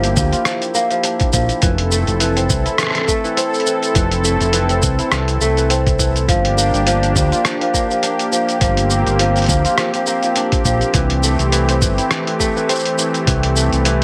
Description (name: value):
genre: folktronica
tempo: 103 BPM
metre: 4/4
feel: swing 56% on 16ths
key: G dorian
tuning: A4 = 440 Hz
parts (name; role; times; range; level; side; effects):
- warm analog pad; sustained chords; 0.0-14.0 s; E3 to A4; -23 LUFS; equal; chorus
- kora; arpeggios; 0.0-14.0 s; E3 to F4; -22 LUFS; equal; vintage 12-bit sampler grit, tape echo
- overdriven fingered electric bass; bass; 0.0-14.0 s; F1 to D2; -20 LUFS; equal; none
- lo-fi sampler-style drum kit; drums; 0.0-14.0 s; hi-hat, rim click, shaker; -22 LUFS; equal; studio reverb
- electronic kick drum; drums; 0.2-13.4 s; none; -22 LUFS; equal; studio reverb
room: light reverb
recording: none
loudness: -16 LUFS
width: mono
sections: 0.0-14.0 A section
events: none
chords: 0.0 Gm7; 1.6 Fmaj7; 6.3 Gm7; 10.9 C6